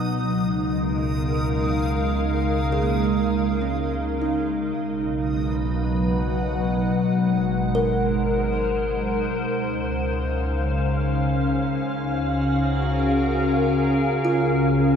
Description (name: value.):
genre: ambient.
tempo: 76 BPM.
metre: 3/4.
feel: straight.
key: Db mixolydian, Db major from 9.5 s.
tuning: A4 = 439 Hz.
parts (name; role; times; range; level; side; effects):
glassy FM pad; sustained chords; 0.0-15.0 s; Cb3 to Gb5; -21 LUFS; equal; ensemble chorus, built-in reverb.
kalimba; arpeggios; 0.0-9.5, 14.2-15.0 s; Bb3 to Bb4; -29 LUFS; right 1 dB; diffuse ambient delay.
warm sub bass; bass; 0.0-15.0 s; Ab1 to Db2; -29 LUFS; equal; none.
backwards swelling texture; texture; 0.0-9.5 s; Eb6; -38 LUFS; right 2 dB; built-in reverb.
room: wet cathedral reverb, RT60 6.7 s.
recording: in a vast, echoing space.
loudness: -20 LUFS.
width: side -7 dB against mid.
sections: 0.0-9.5 A section; 9.5-15.0 B section.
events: fade-out on synth texture 0.0-9.5; fade-out on sub bass 9.5-15.0.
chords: 0.0 Db6; 4.8 Cb; 7.1 Ab9; 9.5 Dbmaj9; 11.9 Gbmaj9/Db; 14.2 Bbm11/Db.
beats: | 0.04 0.82 1.61 | 2.40 3.19 3.98 | 4.77 5.56 6.35 | 7.14 7.93 8.72 | 9.51 10.30 11.09 | 11.88 12.67 13.46 | 14.25.